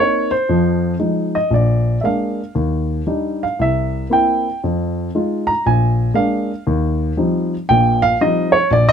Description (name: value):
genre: solo jazz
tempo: 116 BPM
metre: 4/4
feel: swing 66% on 8ths, rubato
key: Eb major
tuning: A4 = 440 Hz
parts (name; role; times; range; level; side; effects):
- dark baby grand piano; solo; 0.0-8.9 s; Bb1 to Bb5; -15 LUFS; equal; none
room: moderate club reverb, RT60 0.5 s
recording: close, detailed microphones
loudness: -15 LUFS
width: side -7 dB against mid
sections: 0.0-8.9 A section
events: grand piano solo 0.0-8.9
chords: 0.5 Fm7; 1.5 Bb7; 2.6 Ebmaj7; 3.6 C7; 4.6 Fm7; 5.6 Bb7; 6.7 Eb69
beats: | 0.47 0.99 1.51 2.03 | 2.55 3.07 3.59 4.11 | 4.62 5.13 5.64 6.15 | 6.66 7.18 7.69 8.20 | 8.72